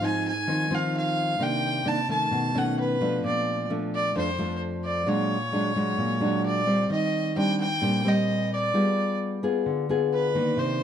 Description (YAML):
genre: bossa nova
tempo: 131 BPM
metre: 4/4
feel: straight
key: G minor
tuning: A4 = 442 Hz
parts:
  - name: rich fiddle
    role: melody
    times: 0.0-10.8 s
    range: B4 to A5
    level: -27 LUFS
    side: equal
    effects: none
  - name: nylon-string guitar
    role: accompaniment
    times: 0.0-10.8 s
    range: F2 to Ab4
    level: -25 LUFS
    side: left 1 dB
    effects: none
room: studio reverb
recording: dry, close 1970s-style studio recording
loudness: -23 LUFS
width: side -9 dB against mid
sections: 0.0-10.8 A section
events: none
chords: 0.0 Ab6; 1.4 Cm9; 2.3 B9; 3.2 Bbmaj7; 5.1 Bb7alt; 6.9 Eb6; 8.7 G7b9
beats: 0.02 0.47 0.93 | 1.39 1.85 2.31 2.77 | 3.23 3.69 4.14 4.60 | 5.06 5.52 5.98 6.44 | 6.90 7.36 7.81 8.27 | 8.73 9.19 9.65 10.11 | 10.57